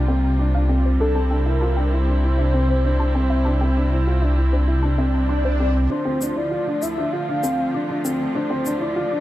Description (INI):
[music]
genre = piano and strings electronica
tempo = 98 BPM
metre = 4/4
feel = straight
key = D minor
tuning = A4 = 441 Hz
[part]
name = rich studio string section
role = sustained chords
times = 0.0-9.2 s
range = C3 to F4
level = -27 LUFS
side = right 1 dB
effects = none
[part]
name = soft round pluck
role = arpeggios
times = 0.0-9.2 s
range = C5 to D6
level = -34 LUFS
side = left 2 dB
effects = analog chorus, cassette tape, tape echo
[part]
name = dark baby grand piano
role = riff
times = 0.0-9.2 s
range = C4 to F4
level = -24 LUFS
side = left 1 dB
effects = none
[part]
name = dark detuned saw bass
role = bass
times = 0.0-9.0 s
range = C2 to D2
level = -20 LUFS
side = equal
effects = high-pass filter
[part]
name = warm velvety synth lead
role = melody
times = 1.0-9.2 s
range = A4 to F5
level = -27 LUFS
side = equal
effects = chorus
[part]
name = swell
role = sound effects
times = 5.0-5.9 s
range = none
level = -31 LUFS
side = left 1 dB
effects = none
[part]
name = shaker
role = drums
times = 6.2-8.8 s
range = none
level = -32 LUFS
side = left 4 dB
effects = none
[sound]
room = light reverb, small room ambience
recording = dark, warm production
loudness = -18 LUFS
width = side -15 dB against mid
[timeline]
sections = 0.0-5.9 A section; 5.9-9.2 B section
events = swell 5.0-5.9; build-up 5.9-9.2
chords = 0.0 C7sus4; 1.0 Am7/C; 5.9 Dm